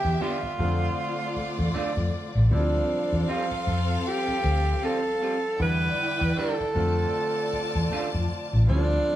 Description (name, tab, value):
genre	soul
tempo	78 BPM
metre	4/4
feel	swing 58% on 16ths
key	unclear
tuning	A4 = 440 Hz
part	breathy tenor saxophone	melody	0.0-9.2 s	D4 to B4	-28 LUFS	right 1 dB	none
part	warm symphonic string section	second line	0.0-9.2 s	A3 to A5	-33 LUFS	left 2 dB	none
part	clear grand piano	accompaniment	0.0-9.2 s	D3 to E5	-34 LUFS	right 1 dB	none
part	hollow-body short-scale fingered electric bass	bass	0.0-9.0 s	A1 to F2	-24 LUFS	equal	none
part	electric guitar through a small old amp	riff	0.2-8.1 s	G3 to G4	-31 LUFS	right 3 dB	none
room	moderate large studio reverb, RT60 1.0 s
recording	band playing live in one room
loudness	-23 LUFS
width	side -13 dB against mid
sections	0.0-9.2 A section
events	grand piano fill 1.4-2.5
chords	0.0 Em7; 0.6 F6; 2.5 Dm11; 5.6 Em7; 6.8 F6